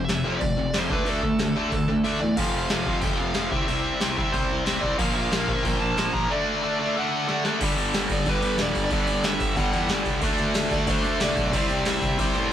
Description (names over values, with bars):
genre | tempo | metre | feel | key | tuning
punk rock | 184 BPM | 4/4 | straight | unclear | A4 = 440 Hz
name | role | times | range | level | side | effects
nasal lead guitar with a parked wah | melody | 0.0-12.5 s | A4 to Bb5 | -29 LUFS | right 1 dB | overdrive
distorted electric guitar | riff | 0.0-12.5 s | F2 to D4 | -26 LUFS | left 3 dB | overdrive
tight distorted guitar | riff | 0.0-12.5 s | F2 to D4 | -30 LUFS | right 6 dB | distortion
fuzz picked electric bass | bass | 0.0-12.5 s | E1 to A2 | -31 LUFS | equal | overdrive
booming analog drum machine | drums | 0.1-12.4 s | crash cymbal, hi-hat, kick drum, snare drum | -28 LUFS | equal | none
distorted electric guitar | riff | 5.0-12.5 s | G2 to D4 | -30 LUFS | equal | overdrive
room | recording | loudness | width
light reverb | rough rehearsal-room recording | -21 LUFS | side -10 dB against mid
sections
0.0-2.4 A section; 2.4-7.6 B section; 7.6-12.5 C section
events
kick and snare drop out 2.1-2.4; drum fill 7.3-7.6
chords
0.0 F5; 0.9 D5; 2.4 F5; 3.5 C; 5.0 Bb5; 6.3 D; 7.6 G5; 10.2 D5; 11.5 C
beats
0.09 0.41 0.74 | 1.07 1.40 1.72 2.05 | 2.38 2.71 3.03 3.36 | 3.69 4.01 4.34 4.67 | 4.99 5.32 5.65 5.97 | 6.30 6.63 6.96 7.28 | 7.61 7.94 8.26 8.59 | 8.92 9.24 9.57 9.90 | 10.22 10.55 10.88 11.21 | 11.53 11.86 12.19 12.52